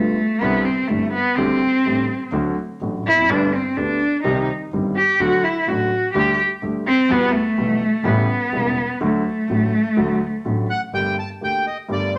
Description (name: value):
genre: tango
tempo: 126 BPM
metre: 4/4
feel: rubato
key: unclear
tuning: A4 = 440 Hz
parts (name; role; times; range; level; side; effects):
- warm cello; second line; 0.0-10.7 s; A3 to G4; -21 LUFS; equal; none
- warm concert grand piano; accompaniment; 0.0-12.1 s; E1 to G4; -25 LUFS; equal; none
- warm double bass; bass; 0.0-12.1 s; E1 to E2; -33 LUFS; equal; none
- bandoneon; melody; 10.7-12.2 s; D5 to A5; -25 LUFS; equal; none
room: wet large studio reverb, RT60 0.8 s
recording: none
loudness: -20 LUFS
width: mono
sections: 0.0-10.9 A section; 10.9-12.2 B section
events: cello solo 0.0-10.9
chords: 0.4 Cadd9; 1.4 Dsus4; 2.3 D; 3.3 Gadd9; 4.3 Cm; 5.2 D; 6.2 Gsus2/D; 7.1 Emadd9; 8.1 A7; 9.0 D; 10.9 Gmadd9